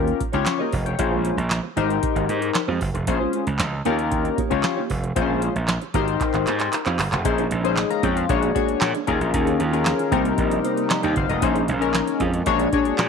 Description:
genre	early-eighties boogie funk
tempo	115 BPM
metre	4/4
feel	straight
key	Bb dorian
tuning	A4 = 439 Hz
part	chorused polysynth	accompaniment	0.0-13.1 s	C4 to Bb5	-23 LUFS	left 12 dB	none
part	mellow electric guitar	riff	0.0-13.0 s	Ab3 to Eb5	-30 LUFS	right 15 dB	ensemble chorus
part	gritty slap bass	bass	0.0-13.1 s	F1 to Bb2	-24 LUFS	right 2 dB	overdrive
part	booming analog drum machine	drums	0.1-13.1 s	handclaps, hi-hat, kick drum, snare drum	-26 LUFS	right 2 dB	none
part	chorused pulse-width pad	sustained chords	7.3-13.1 s	C3 to Ab4	-28 LUFS	right 1 dB	none
room	light reverb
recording	1960s-style stereo with parts hard left and right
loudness	-19 LUFS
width	side -6 dB against mid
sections	0.0-7.2 A section; 7.2-13.1 B section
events	drum fill 6.2-7.2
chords	0.0 Eb7; 1.0 Bbm9; 1.8 Abmaj7; 3.1 Bbm9; 3.9 Eb7; 5.2 Bbm9; 5.9 Abmaj7; 7.2 Bbm11; 8.3 Bb7alt; 9.1 Eb9sus4; 10.1 Cm7; 11.4 Bbm11; 12.5 Bb7alt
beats	0.47 | 0.99 1.51 2.03 2.55 | 3.08 3.60 4.12 4.64 | 5.16 5.68 6.21 6.73 | 7.25 7.77 8.29 8.81 | 9.34 9.86 10.38 10.90 | 11.42 11.95 12.47 12.99

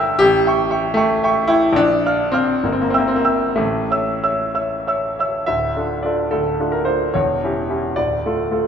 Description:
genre	classical, romantic character piece for solo piano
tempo	59-80 BPM (dotted quarters)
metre	6/8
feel	rubato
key	D minor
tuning	A4 = 442 Hz
part	clear concert grand piano	solo	0.0-8.7 s	D1 to F6	-16 LUFS	equal	none
room	moderate scoring stage reverb, RT60 2.0 s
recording	minimal, uncompressed stereo recording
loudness	-16 LUFS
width	side -7 dB against mid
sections	0.0-5.5 A section; 5.5-8.7 B section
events	none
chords	0.2 A7; 1.8 Bb; 2.6 Edim/G; 3.6 A; 5.5 Dm; 7.1 C#dim/E; 8.0 Dm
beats	| 0.20 0.97 | 1.77 2.63 | 3.57 4.55 | 5.49 6.33 | 7.14 7.95

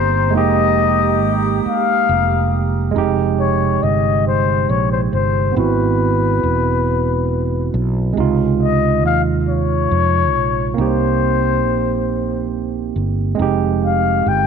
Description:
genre	slow six-eight R&B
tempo	46 BPM (dotted quarters)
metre	6/8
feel	straight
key	F minor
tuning	A4 = 440 Hz
part	breathy flugelhorn	melody	0.0-14.5 s	B4 to G5	-19 LUFS	left 10 dB	none
part	barky tine electric piano	accompaniment	0.0-14.5 s	C3 to G4	-19 LUFS	right 11 dB	overdrive
part	breathy mellow small flute group	sustained chords	0.0-2.9 s	G4 to Eb6	-26 LUFS	equal	none
part	fretless electric bass	bass	0.0-14.5 s	E1 to F2	-19 LUFS	equal	none
room	light reverb, small room ambience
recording	1960s-style stereo with parts hard left and right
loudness	-14 LUFS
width	side -6 dB against mid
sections	0.0-2.9 A section; 2.9-14.5 B section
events	none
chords	0.3 Fm11; 2.9 Fm9; 5.5 Ab7alt; 8.2 Dbmaj9; 10.8 Cm7; 13.4 Fm9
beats	| 0.33 1.63 | 2.94 4.24 | 5.54 6.85 | 8.15 9.46 | 10.76 12.07 | 13.37

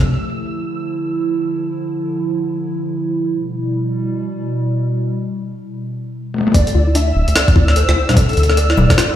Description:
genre	IDM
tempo	148 BPM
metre	4/4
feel	swing 62% on 16ths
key	D dorian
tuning	A4 = 441 Hz
part	warbly tape-like pad	sustained chords	0.0-6.5 s	B2 to E4	-20 LUFS	right 2 dB	chorus, built-in reverb, vintage 12-bit sampler grit
part	round analog bass	bass	0.0, 6.5-9.0 s	D1 to D2	-14 LUFS	equal	none
part	flickering grainy texture	texture	0.0-0.1, 7.0-9.2 s	E6	-27 LUFS	left 1 dB	built-in reverb, sidechain pumping
part	jungle sampler-style drum kit	drums	6.3-9.1 s	congas, hi-hat, rim click, shaker, toms	-17 LUFS	left 1 dB	overdrive, low-pass filter on snare, low-pass filter on hats, low-pass filter on toms, low-pass filter on perc, low-pass filter on room
part	warbly nostalgic lead	melody	6.5-9.2 s	A4 to E5	-22 LUFS	left 1 dB	ensemble chorus, cassette tape, ping-pong delay
part	warbly dusty pluck	arpeggios	6.5-9.1 s	D4 to D5	-23 LUFS	left 3 dB	chorus, vintage 12-bit sampler grit, ping-pong delay
part	electronic kick drum	drums	6.5-9.0 s	none	-14 LUFS	equal	overdrive
room	light reverb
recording	played on a big sound system in a bare room, stone room reverb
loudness	-15 LUFS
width	side -11 dB against mid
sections	0.1-6.5 A section; 6.5-9.2 B section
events	drum fill 6.3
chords	0.1 Dmadd9; 3.3 Em; 6.5 Dsus2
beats	| 0.06 0.47 0.87 1.27 | 1.68 2.09 2.49 2.90 | 3.30 3.71 4.11 4.52 | 4.92 5.33 5.74 6.14 | 6.55 6.95 7.36 7.76 | 8.17 8.57 8.98

